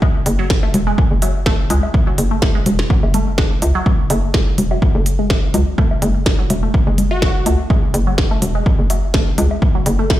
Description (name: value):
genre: minimal techno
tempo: 125 BPM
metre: 4/4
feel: swing 54% on 16ths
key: F# minor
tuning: A4 = 440 Hz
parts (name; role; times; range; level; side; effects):
- resonant blip pluck; riff; 0.0-10.0 s; F#3 to A3; -24 LUFS; equal; phaser, sidechain pumping, tape echo
- electronic kick drum; drums; 0.0-10.2 s; none; -16 LUFS; equal; overdrive
- woodblock and congas; percussion; 0.0-10.2 s; none; -24 LUFS; left 2 dB; tape echo
- hollow knocking FM bass; bass; 0.3-10.2 s; E1 to C#2; -18 LUFS; equal; tube saturation, sidechain pumping
- minimal click drum kit; drums; 0.3-10.2 s; hi-hat, snare drum; -22 LUFS; equal; overdrive
- plucky unison lead; melody; 7.1-7.6 s; F#4; -26 LUFS; equal; tape echo
room: light reverb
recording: played on a big sound system in a bare room, large studio reverb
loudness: -13 LUFS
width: side -14 dB against mid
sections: 0.0-10.2 A section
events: none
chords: none